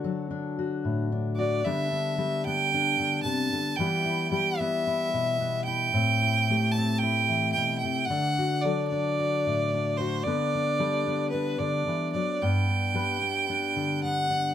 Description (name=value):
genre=acoustic folk duo or small band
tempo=112 BPM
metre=4/4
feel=straight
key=G major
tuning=A4 = 440 Hz
part: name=fingerpicked steel-string acoustic guitar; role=accompaniment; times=0.0-14.5 s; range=G2 to B4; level=-27 LUFS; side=left 2 dB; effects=none
part: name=clear fiddle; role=melody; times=1.4-14.5 s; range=B4 to A5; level=-27 LUFS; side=right 2 dB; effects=none
room=wet studio reverb, RT60 0.5 s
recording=none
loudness=-24 LUFS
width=side -10 dB against mid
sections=0.0-14.5 A section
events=none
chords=0.0 D; 1.6 Gadd9/D; 3.8 Em; 5.9 Am7; 8.1 D; 10.3 Gadd9/D; 12.4 G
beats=0.03 0.57 1.11 | 1.64 2.18 2.72 3.26 | 3.79 4.33 4.87 5.41 | 5.95 6.49 7.02 7.56 | 8.10 8.64 9.18 9.72 | 10.25 10.79 11.33 11.87 | 12.41 12.95 13.49 14.03